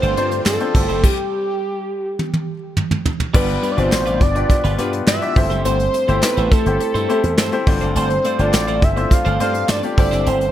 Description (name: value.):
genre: 1980s-style pop.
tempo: 104 BPM.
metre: 4/4.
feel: straight.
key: G mixolydian.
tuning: A4 = 440 Hz.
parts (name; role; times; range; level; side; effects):
wide unison lead; melody; 0.0-10.5 s; G4 to F5; -21 LUFS; equal; none.
clear baby grand piano; accompaniment; 0.0-10.5 s; G2 to B5; -23 LUFS; left 4 dB; none.
string machine, violins; sustained chords; 0.0-1.0 s; C3 to G4; -31 LUFS; equal; ensemble chorus.
twelve-string electric guitar; riff; 0.0-10.4 s; G3 to C5; -26 LUFS; right 5 dB; wide subtle chorus.
slap bass with an envelope filter; bass; 0.0-10.5 s; F#1 to G2; -21 LUFS; equal; none.
soft brush drum kit; drums; 0.0-10.5 s; crash cymbal, hi-hat, kick drum, snare drum, tambourine, toms; -18 LUFS; equal; none.
group handclap; percussion; 0.5-9.8 s; none; -34 LUFS; right 5 dB; none.
room: small room ambience.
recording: none.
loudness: -15 LUFS.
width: side -12 dB against mid.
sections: 0.0-3.3 A section; 3.3-10.5 A section.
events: stop 1.0-3.3; drum fill 2.2-3.3.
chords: 0.0 Dm7; 0.7 Am7; 3.3 G7; 5.4 C6; 7.7 Dm7; 10.0 Am7.